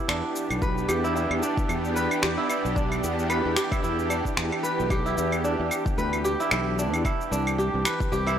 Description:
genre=organic downtempo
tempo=112 BPM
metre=4/4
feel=swing 57% on 16ths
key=E minor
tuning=A4 = 440 Hz
part: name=bowed-like drone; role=sustained chords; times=0.0-8.4 s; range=E3 to G4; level=-30 LUFS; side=right 2 dB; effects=built-in reverb, sidechain pumping
part: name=kora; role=arpeggios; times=0.0-8.4 s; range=D4 to B4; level=-28 LUFS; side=right 1 dB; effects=analog delay
part: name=bronze singing bowl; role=texture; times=0.0-8.4 s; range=E4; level=-43 LUFS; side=equal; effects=none
part: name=sustaining fretless electric bass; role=bass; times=0.1-8.4 s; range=B1 to E2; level=-28 LUFS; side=left 1 dB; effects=transformer saturation, ensemble chorus
part: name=electronic finger snaps, claves and cabasa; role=drums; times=0.1-8.4 s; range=none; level=-29 LUFS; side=equal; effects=overdrive
part: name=electronic kick drum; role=drums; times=0.6-8.1 s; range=none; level=-28 LUFS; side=equal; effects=overdrive
room=light reverb, small room ambience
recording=dry, gritty hardware recording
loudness=-23 LUFS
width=side -9 dB against mid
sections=0.0-8.4 A section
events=none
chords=0.0 Em7; 7.0 C

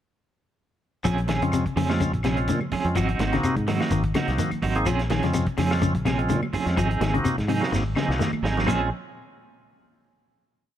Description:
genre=afrobeat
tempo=126 BPM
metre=4/4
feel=swing 55% on 16ths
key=Bb minor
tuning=A4 = 442 Hz
part: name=electric guitar at the edge of break-up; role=arpeggios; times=1.0-8.8 s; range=Bb2 to F3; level=-28 LUFS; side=left 6 dB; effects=none
part: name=clean electric guitar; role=stabs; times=1.0-8.9 s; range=F3 to Ab4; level=-29 LUFS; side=right 5 dB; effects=tremolo
part: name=claves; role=percussion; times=1.0-8.8 s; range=none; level=-39 LUFS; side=left 7 dB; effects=none
part: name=congas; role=percussion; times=1.0-8.8 s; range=none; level=-32 LUFS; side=right 7 dB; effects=none
part: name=shekere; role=percussion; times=1.0-8.8 s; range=none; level=-33 LUFS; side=right 1 dB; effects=none
part: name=fingered electric bass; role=bass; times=1.1-8.9 s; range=Ab1 to Bb2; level=-26 LUFS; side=equal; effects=none
part: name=warm soul drum kit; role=drums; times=1.1-8.8 s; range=crash cymbal, hi-hat, kick drum, snare drum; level=-31 LUFS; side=equal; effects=none
part: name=bright tonewheel organ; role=accompaniment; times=1.4-8.9 s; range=Ab3 to Ab4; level=-30 LUFS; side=right 1 dB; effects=slow rotary speaker
room=light reverb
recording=none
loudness=-21 LUFS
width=side -10 dB against mid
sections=1.0-8.7 groove; 8.7-10.6 final chord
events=drum fill 7.7-8.7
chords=1.0 Bbm9; 3.0 Ab7; 4.9 Bbm9; 6.8 Ab7; 8.7 Bbm9

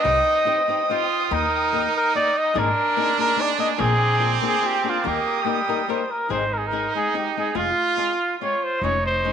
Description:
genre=mexican folk, mariachi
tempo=144 BPM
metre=3/4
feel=straight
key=Eb major, Ab major from 6.3 s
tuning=A4 = 440 Hz
part: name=warm trumpet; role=melody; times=0.0-9.3 s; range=F4 to Eb5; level=-22 LUFS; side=equal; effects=none
part: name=clear trumpet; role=second line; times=0.0-9.3 s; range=G3 to F4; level=-25 LUFS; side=right 9 dB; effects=none
part: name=flamenco guitar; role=accompaniment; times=0.0-9.3 s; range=Ab2 to C5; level=-29 LUFS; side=left 12 dB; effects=none
part: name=muted studio violin section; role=sustained chords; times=0.0-6.3 s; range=Bb4 to Eb6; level=-29 LUFS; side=right 1 dB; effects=none
part: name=upright bass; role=bass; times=0.1-9.3 s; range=F1 to Eb2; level=-27 LUFS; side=equal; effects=none
room=moderate plate reverb, RT60 3.2 s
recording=1960s-style stereo with parts hard left and right, nothing above 11.0 kHz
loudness=-19 LUFS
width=side -8 dB against mid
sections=0.0-6.3 A section; 6.3-9.3 B section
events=none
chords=0.1 Cm; 1.3 Eb; 2.6 Abadd9; 3.8 Bb7; 5.0 Eb; 6.3 Ab; 7.6 Fm; 8.8 Dbadd9/F

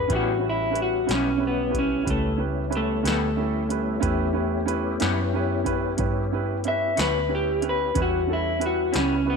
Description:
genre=slow blues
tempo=61 BPM (dotted quarters)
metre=12/8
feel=straight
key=unclear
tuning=A4 = 440 Hz
part: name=electric guitar through a small old amp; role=melody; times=0.0-9.4 s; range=A3 to E5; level=-24 LUFS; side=left 1 dB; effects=spring reverb
part: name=clear upright piano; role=accompaniment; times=0.0-9.4 s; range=C#4 to B4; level=-29 LUFS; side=right 13 dB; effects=none
part: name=tonewheel organ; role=sustained chords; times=0.0-9.4 s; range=G3 to B4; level=-31 LUFS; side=left 13 dB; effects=slow rotary speaker, chorus vibrato
part: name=vintage muted fingered electric bass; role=bass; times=0.0-9.4 s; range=A1 to G2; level=-29 LUFS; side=equal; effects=none
part: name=electric guitar through a small old amp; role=accompaniment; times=0.1-9.1 s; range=A2 to C#4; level=-33 LUFS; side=left 13 dB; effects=tremolo
part: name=electro analog drum machine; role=drums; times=0.1-9.1 s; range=hi-hat, kick drum, snare drum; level=-30 LUFS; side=equal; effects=overdrive
room=light reverb, digital ambience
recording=1960s-style stereo with parts hard left and right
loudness=-22 LUFS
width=side -5 dB against mid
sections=0.0-9.4 A section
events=clean electric guitar solo 0.0-9.4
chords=0.1 A9

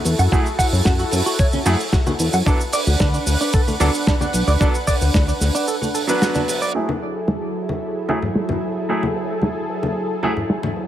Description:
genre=nu-disco, nu disco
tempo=112 BPM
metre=4/4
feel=straight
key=F# minor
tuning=A4 = 438 Hz
part: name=lush unison pad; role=sustained chords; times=0.0-10.9 s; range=F#3 to F#5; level=-25 LUFS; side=equal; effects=chorus, sidechain pumping
part: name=warm soul drum kit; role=drums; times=0.0-10.9 s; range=cabasa, hi-hat, snare drum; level=-24 LUFS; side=right 1 dB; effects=low-pass filter on hats, low-pass filter on snare, low-pass filter on perc, low-pass filter on room
part: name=chorused synth bass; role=bass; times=0.1-5.5 s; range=B1 to F#2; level=-18 LUFS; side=equal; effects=none
part: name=direct-recorded clean electric guitar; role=riff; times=0.2-6.7 s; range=A3 to F#5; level=-25 LUFS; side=right 3 dB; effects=lush chorus, tape echo
part: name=bright baby grand piano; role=accompaniment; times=0.3-10.3 s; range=F#3 to B4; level=-24 LUFS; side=right 2 dB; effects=low-pass filter, tape echo
part: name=electronic kick drum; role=drums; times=0.3-5.3 s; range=none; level=-19 LUFS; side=equal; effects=none
part: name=congas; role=percussion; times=1.5-10.7 s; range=none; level=-27 LUFS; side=left 3 dB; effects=none
room=light reverb, small room reverb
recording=none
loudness=-17 LUFS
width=side -11 dB against mid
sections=0.0-6.7 A section; 6.7-10.9 B section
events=break 5.7-6.7; filter sweep on grand piano 6.7-10.9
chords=0.0 F#m7; 2.5 D6; 6.7 F#m9

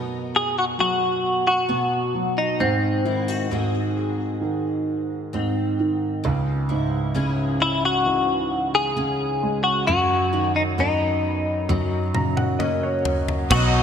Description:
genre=pop ballad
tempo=66 BPM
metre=4/4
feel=straight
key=B major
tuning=A4 = 438 Hz
part: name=warm grand piano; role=accompaniment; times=0.0-13.8 s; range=C#2 to A#5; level=-24 LUFS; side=right 2 dB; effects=analog chorus
part: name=picked steel-string acoustic guitar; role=arpeggios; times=0.0-13.8 s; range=G#2 to B4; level=-31 LUFS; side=left 5 dB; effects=ensemble chorus, ping-pong delay
part: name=direct-recorded clean electric guitar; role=melody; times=0.4-13.8 s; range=F#3 to G#4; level=-21 LUFS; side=left 2 dB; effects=analog chorus
part: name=modern studio drum kit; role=drums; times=11.7-13.7 s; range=crash cymbal, kick drum, toms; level=-25 LUFS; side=left 1 dB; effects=gated reverb
part: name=warm studio violin section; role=second line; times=13.5-13.8 s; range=D#4 to D#5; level=-25 LUFS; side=left 1 dB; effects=none
part: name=vintage muted fingered electric bass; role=bass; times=13.5-13.8 s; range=B1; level=-22 LUFS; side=equal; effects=none
room=moderate lush hall reverb, RT60 2.9 s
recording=bright 1980s-style digital production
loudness=-20 LUFS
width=side -8 dB against mid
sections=0.0-13.5 A section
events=grand piano fill 11.7-13.5; drum fill 11.7-13.5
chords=0.0 Bmaj7; 2.6 G#7; 6.2 C#m; 9.9 B/F#; 11.7 F#

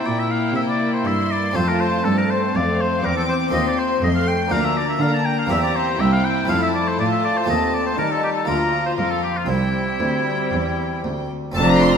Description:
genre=classical, baroque-style concerto movement with solo episodes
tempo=121 BPM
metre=4/4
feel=straight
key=F major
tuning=A4 = 439 Hz
part: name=clear oboe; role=melody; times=0.0-11.0 s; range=E4 to A5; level=-24 LUFS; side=left 1 dB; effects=none
part: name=clear symphonic violin section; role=melody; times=0.0-12.0 s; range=F5 to D6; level=-27 LUFS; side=left 3 dB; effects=none
part: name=rich chamber violin section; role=second line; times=0.0-11.4 s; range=C4 to G4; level=-25 LUFS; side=left 1 dB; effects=none
part: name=clear studio viola section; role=accompaniment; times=0.0-12.0 s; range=F3 to D4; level=-26 LUFS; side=equal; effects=none
part: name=harpsichord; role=accompaniment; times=0.0-12.0 s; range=C2 to A4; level=-26 LUFS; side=equal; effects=none
part: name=rich symphonic cello section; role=bass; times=0.0-12.0 s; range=C2 to Eb3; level=-24 LUFS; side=right 2 dB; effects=none
part: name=rich chamber double bass section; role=bass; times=11.6-12.0 s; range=F1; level=-23 LUFS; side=right 2 dB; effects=none
room=wet scoring stage reverb, RT60 1.6 s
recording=none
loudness=-18 LUFS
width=side -7 dB against mid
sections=0.0-11.6 A section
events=none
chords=0.0 C7; 1.6 F; 3.5 F7/Eb; 4.5 Bb/D; 5.5 C7/E; 6.5 F; 7.5 F7/Eb; 8.5 Bb/D; 9.5 C

